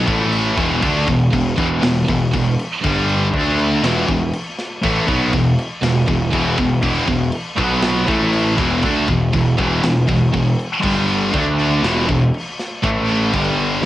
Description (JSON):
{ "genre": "heavy metal", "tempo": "120 BPM", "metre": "4/4", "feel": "straight", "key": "E minor", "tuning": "A4 = 440 Hz", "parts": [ { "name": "scooped high-gain guitar", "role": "riff", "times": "0.0-13.9 s", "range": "E2 to D4", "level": "-21 LUFS", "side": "left 5 dB", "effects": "distortion, cassette tape" }, { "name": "scooped high-gain guitar", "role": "riff", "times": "0.0-13.9 s", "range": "E2 to D4", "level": "-22 LUFS", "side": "right 5 dB", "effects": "distortion, cassette tape" }, { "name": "sludgy distorted guitar", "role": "riff", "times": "0.0-13.9 s", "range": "E2 to D4", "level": "-20 LUFS", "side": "equal", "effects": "overdrive, cassette tape" }, { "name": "fuzz picked electric bass", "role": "bass", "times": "0.0-13.9 s", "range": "E1 to D2", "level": "-20 LUFS", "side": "equal", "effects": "overdrive" }, { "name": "tight metal drum kit", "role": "drums", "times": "0.1-13.9 s", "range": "crash cymbal, kick drum, snare drum", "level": "-24 LUFS", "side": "equal", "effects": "cassette tape" } ], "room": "small room ambience", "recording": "home recording on cassette", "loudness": "-15 LUFS", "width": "side -14 dB against mid", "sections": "0.0-13.9 A section", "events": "half time 0.0-13.9", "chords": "0.1 A5; 0.6 E5; 2.8 G5; 3.3 D5; 3.8 E5; 7.6 B5; 8.1 A5; 8.6 E5; 10.8 G5; 11.3 D5; 11.8 E5; 12.8 A5; 13.3 G5" }